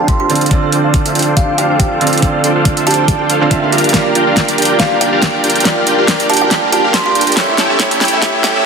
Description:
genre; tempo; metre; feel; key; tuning
future bass; 140 BPM; 4/4; swing 55% on 16ths, half-time; D minor; A4 = 440 Hz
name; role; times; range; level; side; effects
kalimba; melody; 0.0-8.6 s; E5 to C6; -18 LUFS; right 2 dB; sidechain pumping, digital delay
felt-muted upright piano; accompaniment; 0.0-8.7 s; D3 to F5; -17 LUFS; right 4 dB; sidechain pumping, dub echo
dense compressed supersaw; riff; 0.0-8.6 s; C#4 to G5; -15 LUFS; equal; sidechain pumping, low-pass filter
electronic kick drum; drums; 0.1-8.3 s; none; -15 LUFS; equal; small room reverb
pop drum kit; drums; 0.1-8.5 s; hi-hat, snare drum; -16 LUFS; equal; small room reverb
riser; sound effects; 7.5-8.7 s; none; barely audible; none; none
room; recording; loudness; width
wet lush hall reverb, RT60 2.1 s; dense, heavily limited modern master, high-pass filter; -10 LUFS; side -5 dB against mid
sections
0.0-8.7 A section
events
build-up 0.0-8.7; filter sweep on supersaw synth 0.0-8.7; filter sweep 0.0-8.7; drum fill 3.9-8.7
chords
0.0 Dm7; 3.7 Bb6; 7.4 A7

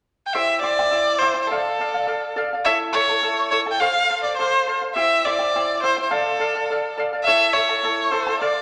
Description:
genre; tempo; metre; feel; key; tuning
andean folk; 104 BPM; 2/4; straight; D minor; A4 = 444 Hz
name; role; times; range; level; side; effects
clear erhu; melody; 0.3-8.6 s; A4 to G5; -22 LUFS; equal; none
charango; accompaniment; 0.3-8.6 s; E4 to A5; -26 LUFS; equal; none
room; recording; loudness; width
wet large studio reverb, RT60 1.4 s; none; -21 LUFS; mono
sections
0.3-8.6 A section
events
none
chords
0.3 C; 1.5 Dm; 2.6 A; 3.8 F; 4.9 C; 6.1 Dm; 7.2 A

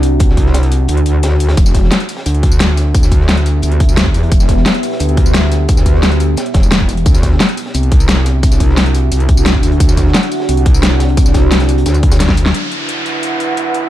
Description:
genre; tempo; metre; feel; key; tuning
dark technical drum and bass; 175 BPM; 4/4; straight; E minor; A4 = 440 Hz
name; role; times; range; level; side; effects
deep dark ambient pad; sustained chords; 0.0-13.9 s; B3 to E5; -20 LUFS; equal; chorus, built-in reverb, sidechain pumping
metallic wobble bass; bass; 0.0-12.5 s; E1 to E2; -12 LUFS; equal; chorus, overdrive
crunchy breakbeat drum kit; drums; 0.0-12.5 s; hi-hat, snare drum; -27 LUFS; right 1 dB; high-pass filter on hats, small room reverb, high-pass filter on snare, high-pass filter on room
dubstep drum kit; drums; 0.0-13.8 s; hi-hat, snare drum, tambourine; -17 LUFS; left 1 dB; small room reverb
electronic kick drum; drums; 0.2-12.4 s; none; -12 LUFS; equal; small room reverb
downlifter; sound effects; 12.5-13.9 s; none; -19 LUFS; equal; none
airy breathy pad; texture; 12.5-13.9 s; E4 to F#5; -18 LUFS; right 4 dB; chorus, sidechain pumping
room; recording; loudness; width
little or no reverb; dark, warm production; -10 LUFS; side -13 dB against mid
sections
0.0-12.5 A section; 12.5-13.9 B section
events
kick drops out 0.9-1.6; drum fill 12.2-12.5; band accent 12.5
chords
0.0 Dadd9; 1.6 Em; 7.1 Dadd9; 12.5 Em

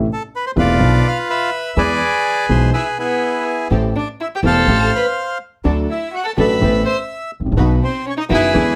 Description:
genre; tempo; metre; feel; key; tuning
tango; 124 BPM; 4/4; rubato; A minor; A4 = 440 Hz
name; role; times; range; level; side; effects
warm concert grand piano; accompaniment; 0.0-8.7 s; E1 to A4; -20 LUFS; equal; none
upright bass; bass; 0.0-8.8 s; E1 to E2; -21 LUFS; equal; none
bandoneon; melody; 0.1-8.8 s; E4 to C6; -21 LUFS; equal; none
warm violin; second line; 2.7-8.7 s; B3 to C5; -23 LUFS; equal; none
clear studio string section; stabs; 3.7-8.7 s; C4 to B4; -30 LUFS; equal; none
room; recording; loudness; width
moderate studio ambience, RT60 0.5 s; none; -17 LUFS; mono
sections
0.0-8.8 A section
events
none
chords
0.0 Am; 0.8 Bdim; 1.8 E; 3.7 Am7; 4.7 Fadd9/A; 5.7 D; 6.6 Amadd9; 7.6 B

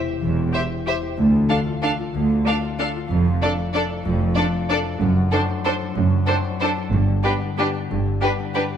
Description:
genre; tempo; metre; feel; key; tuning
classical, orchestral ballroom waltz; 187 BPM; 3/4; uneven beats, rubato; G major from 5.0 s; A4 = 440 Hz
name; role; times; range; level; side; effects
concert harp; arpeggios; 0.0-8.8 s; F2 to C5; -27 LUFS; left 7 dB; none
rich studio cello section; bass; 0.2-8.2 s; D2 to G2; -22 LUFS; right 2 dB; none
rich studio double bass section; bass; 0.2-8.2 s; E1 to D2; -25 LUFS; right 3 dB; none
rich studio violin section; melody; 0.5-8.6 s; B4 to F5; -28 LUFS; left 1 dB; none
rich studio violin section; second line; 0.5-8.6 s; G4 to C5; -28 LUFS; equal; none
clear studio viola section; accompaniment; 0.5-8.6 s; D4 to G4; -28 LUFS; right 2 dB; none
room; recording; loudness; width
moderate concert hall reverb, RT60 1.9 s; none; -18 LUFS; side -8 dB against mid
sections
0.0-8.8 A section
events
none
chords
0.0 C/E; 1.2 Dm; 3.1 Dm/F; 5.0 D7/F#; 6.9 G

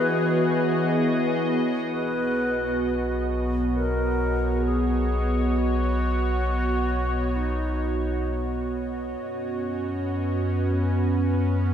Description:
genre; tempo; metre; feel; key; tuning
ambient; 66 BPM; 4/4; straight; B major; A4 = 440 Hz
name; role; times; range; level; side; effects
bright alto flute; melody; 0.0-8.3 s; D#4 to B4; -29 LUFS; left 2 dB; ping-pong delay
evolving wavetable pad; sustained chords; 0.0-11.7 s; B2 to D#5; -25 LUFS; right 1 dB; chorus, built-in reverb
bowed-like drone; drone; 0.0-2.0, 9.8-11.7 s; B3 to C#5; -35 LUFS; equal; built-in reverb
warm sub bass; bass; 1.9-11.7 s; B1 to F#2; -26 LUFS; left 1 dB; tube saturation
room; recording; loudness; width
wet lush hall reverb, RT60 2.7 s; none; -22 LUFS; side -9 dB against mid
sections
0.0-1.9 A section; 1.9-11.7 B section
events
none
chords
0.0 Emaj7; 1.9 Badd9; 9.2 F#sus4

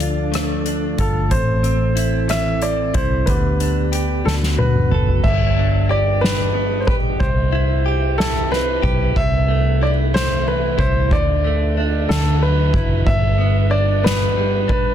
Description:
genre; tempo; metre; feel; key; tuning
six-eight pop ballad; 61 BPM (dotted quarters); 6/8; straight; G major; A4 = 441 Hz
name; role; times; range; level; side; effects
clear concert grand piano; melody; 0.0-14.9 s; A4 to E5; -22 LUFS; equal; none
direct-recorded clean electric guitar; accompaniment; 0.0-14.9 s; G2 to A4; -23 LUFS; equal; double-tracked left and right
percussive tonewheel organ; sustained chords; 0.0-5.2 s; D3 to A4; -27 LUFS; right 1 dB; fast rotary speaker
vintage muted fingered electric bass; bass; 0.0-14.9 s; F#1 to D2; -20 LUFS; equal; none
soft-mallet drum kit; drums; 0.0-14.8 s; crash cymbal, hi-hat, kick drum, ride cymbal, rim click, snare drum, toms; -21 LUFS; equal; none
room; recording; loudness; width
small room ambience; dense, heavily limited modern master; -15 LUFS; side -10 dB against mid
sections
0.0-5.2 A section; 5.2-14.9 B section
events
drum fill 4.3-5.2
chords
0.0 Dm; 1.3 Am; 3.3 G/D; 4.3 D6; 5.2 G; 7.2 C; 9.2 Am/C; 11.1 D5; 12.1 Dadd9; 13.1 G

